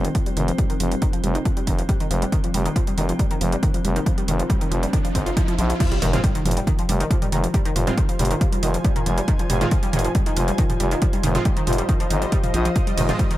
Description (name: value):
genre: driving peak-time techno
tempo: 138 BPM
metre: 4/4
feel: straight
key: F minor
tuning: A4 = 440 Hz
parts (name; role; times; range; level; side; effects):
- analog pluck; riff; 0.0-13.3 s; Eb3 to F4; -26 LUFS; equal; chorus, overdrive, sidechain pumping, tape echo
- growling FM bass; bass; 0.0-13.1 s; F1 to Bb1; -22 LUFS; equal; tube saturation, sidechain pumping
- metallic inharmonic drone; drone; 0.0-5.8 s; F3 to C4; -32 LUFS; equal; chorus, built-in reverb, sidechain pumping
- techno drum kit; drums; 0.0-13.4 s; crash cymbal, hi-hat, ride cymbal, toms; -29 LUFS; right 1 dB; none
- electronic kick drum; drums; 0.1-13.3 s; none; -21 LUFS; equal; none
- riser and impact; sound effects; 4.2-7.5 s; none; -32 LUFS; right 1 dB; none
- granular cloud pad; texture; 6.6-13.4 s; F4 to Ab5; -29 LUFS; equal; built-in reverb, sidechain pumping
- supersaw stab; stabs; 6.1-13.2 s; Ab3 to F4; -29 LUFS; right 3 dB; none
room: little or no reverb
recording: none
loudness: -18 LUFS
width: side -15 dB against mid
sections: 0.0-5.8 A section; 5.8-13.4 B section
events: filter sweep on synth arpeggio sound 0.0-5.8; riser 4.2-5.8; drop 5.8-13.4; impact 5.8-7.5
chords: 0.0 F5; 5.8 Fm